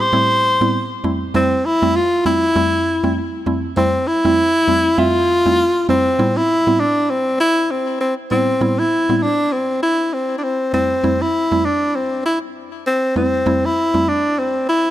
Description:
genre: afrobeats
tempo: 99 BPM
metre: 4/4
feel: swing 58% on 16ths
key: A minor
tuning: A4 = 441 Hz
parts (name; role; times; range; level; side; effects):
- warm tenor saxophone; melody; 0.0-14.9 s; C4 to C5; -16 LUFS; left 1 dB; ping-pong delay
- mallet-like synth pluck; accompaniment; 0.0-14.1 s; F2 to E5; -20 LUFS; right 1 dB; chorus
room: light reverb, small room ambience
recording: none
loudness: -15 LUFS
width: side -13 dB against mid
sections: 0.0-6.2 A section; 6.2-14.9 B section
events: none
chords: 0.0 Am7; 1.0 Fmaj7; 6.2 Am7; 10.7 Fmaj7

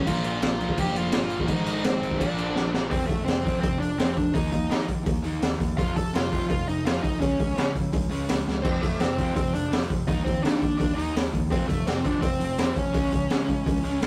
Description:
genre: punk rock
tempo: 168 BPM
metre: 4/4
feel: straight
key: unclear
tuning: A4 = 440 Hz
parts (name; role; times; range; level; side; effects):
- dark smooth lead guitar; melody; 0.0-14.0 s; A3 to A5; -31 LUFS; equal; overdrive
- distorted electric guitar; riff; 0.0-2.9 s; Ab2 to Bb3; -42 LUFS; equal; none
- raw garage guitar; riff; 0.0-14.1 s; F2 to Eb4; -36 LUFS; equal; overdrive
- sludgy distorted guitar; riff; 0.0-14.1 s; F2 to Eb4; -35 LUFS; equal; overdrive
- overdriven picked electric bass; bass; 0.0-14.1 s; F1 to Eb3; -38 LUFS; equal; none
- raw garage drum kit; drums; 0.1-14.1 s; crash cymbal, hi-hat, kick drum, snare drum; -28 LUFS; equal; none
room: light reverb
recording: rough rehearsal-room recording, tube saturation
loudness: -25 LUFS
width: mono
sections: 0.0-2.9 A section; 2.9-14.1 B section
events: drum fill 2.6-2.9, 8.5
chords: 0.1 Bb5; 1.5 Ab; 2.2 Bb; 2.9 F; 4.3 Eb5; 5.8 F; 7.2 Db5; 8.6 F; 10.1 Eb5; 11.5 F; 12.9 Db5

